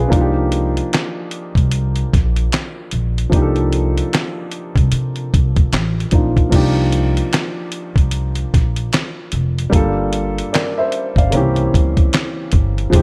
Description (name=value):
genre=lo-fi hip hop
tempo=75 BPM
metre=4/4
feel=swing 61% on 16ths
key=C dorian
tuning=A4 = 439 Hz
part: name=warm upright piano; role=accompaniment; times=0.0-13.0 s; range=Db3 to G5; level=-23 LUFS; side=equal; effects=cassette tape
part: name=upright bass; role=bass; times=0.0-13.0 s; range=F1 to C3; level=-20 LUFS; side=equal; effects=none
part: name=dusty soul sampler-style drum kit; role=drums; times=0.1-13.0 s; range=crash cymbal, handclaps, hi-hat, kick drum, snare drum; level=-19 LUFS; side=equal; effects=none
room=small room reverb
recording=none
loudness=-17 LUFS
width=mono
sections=0.0-6.5 A section; 6.5-13.0 A section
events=none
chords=0.1 Cm11; 9.7 Gm7; 11.3 C7b9